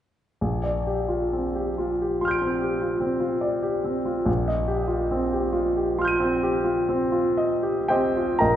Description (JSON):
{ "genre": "classical, impressionist solo piano", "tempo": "36-49 BPM (dotted quarters)", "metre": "9/8", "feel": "rubato", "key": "Bb major", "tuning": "A4 = 441 Hz", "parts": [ { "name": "clear grand piano", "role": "solo", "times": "0.4-8.6 s", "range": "Bb1 to Eb7", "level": "-22 LUFS", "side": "equal", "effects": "none" } ], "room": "wet scoring stage reverb, RT60 1.9 s", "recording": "heard from further back in the room, nothing above 10.9 kHz", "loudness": "-22 LUFS", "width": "side -11 dB against mid", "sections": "0.4-8.4 A section", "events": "none", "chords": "0.4 Bb69; 4.3 Eb69/Bb", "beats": "| 0.41 1.77 3.03 | 4.27 5.54 6.87 | 8.40" }